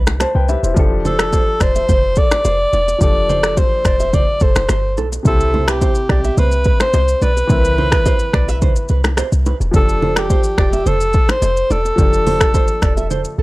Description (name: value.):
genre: afrobeats.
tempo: 107 BPM.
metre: 4/4.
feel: straight.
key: C major.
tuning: A4 = 440 Hz.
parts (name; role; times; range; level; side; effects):
warm grand piano; accompaniment; 0.0-13.4 s; C3 to A5; -25 LUFS; left 2 dB; none.
nylon-string guitar; riff; 0.0-13.4 s; A4 to E5; -26 LUFS; right 7 dB; tape echo.
short 808-style bass; bass; 0.0-13.4 s; E1 to C2; -18 LUFS; equal; none.
afro-pop drum kit; drums; 0.1-13.4 s; finger snaps, hi-hat, kick drum, rim click, shaker; -16 LUFS; equal; none.
bongos and congas; percussion; 0.1-13.2 s; none; -25 LUFS; right 1 dB; none.
breathy alto saxophone; melody; 1.1-13.4 s; G4 to D5; -18 LUFS; equal; none.
room: small room ambience.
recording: dry, gritty hardware recording, cassette tape.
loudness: -12 LUFS.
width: side -20 dB against mid.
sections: 0.0-5.3 A section; 5.3-13.4 B section.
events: break 13.1-13.4.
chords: 0.0 Cmaj7; 0.8 F69; 5.3 Cmaj7; 9.7 F69.